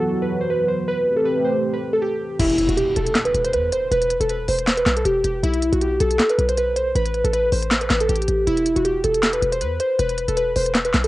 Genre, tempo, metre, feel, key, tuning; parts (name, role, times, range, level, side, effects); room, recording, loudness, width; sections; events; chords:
hip hop, trap; 158 BPM; 4/4; half-time; E minor; A4 = 439 Hz
glassy digital keys; melody; 0.0-11.1 s; E4 to C5; -20 LUFS; equal; chorus, low-pass filter, cassette tape
dark analog pad; sustained chords; 0.0-2.4 s; E3 to G4; -24 LUFS; right 1 dB; chorus, low-pass filter
short 808-style bass; bass; 2.4-11.1 s; E1 to E2; -24 LUFS; equal
trap drum kit; drums; 2.4-11.1 s; crash cymbal, handclaps, hi-hat, snare drum; -23 LUFS; equal; cassette tape
impact; sound effects; 2.4-3.9 s; -29 LUFS; equal
little or no reverb; home recording on cassette, nothing above 10.7 kHz; -18 LUFS; side -17 dB against mid
0.0-2.4 A section; 2.4-11.1 B section
impact 2.4-3.9
0.0 Bsus4; 0.9 Am7; 2.4 E5; 5.4 N.C.; 7.0 A7sus2; 8.5 E5